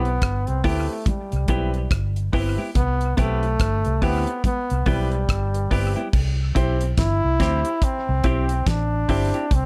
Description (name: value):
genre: roots reggae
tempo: 71 BPM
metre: 4/4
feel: swing 60% on 16ths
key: C major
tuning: A4 = 441 Hz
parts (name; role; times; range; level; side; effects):
- bright trombone; melody; 0.0-9.7 s; G3 to E4; -28 LUFS; equal; tape echo, plate reverb
- warm grand piano; stabs; 0.0-9.3 s; C4 to C5; -33 LUFS; equal; plate reverb
- vintage muted fingered electric bass; bass; 0.0-9.7 s; G1 to D2; -25 LUFS; equal; none
- damped 70s drum kit; drums; 0.1-9.7 s; crash cymbal, hi-hat, kick drum, rim click, snare drum; -25 LUFS; equal; none
- semi-hollow electric guitar; accompaniment; 0.6-9.5 s; B3 to G4; -32 LUFS; equal; tape echo, plate reverb
- congas; percussion; 1.1-6.1 s; none; -32 LUFS; equal; none
room: light reverb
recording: none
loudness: -22 LUFS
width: mono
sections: 0.0-6.1 A section; 6.1-9.7 B section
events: trombone solo 0.0-6.1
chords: 0.0 Cmaj7; 6.1 C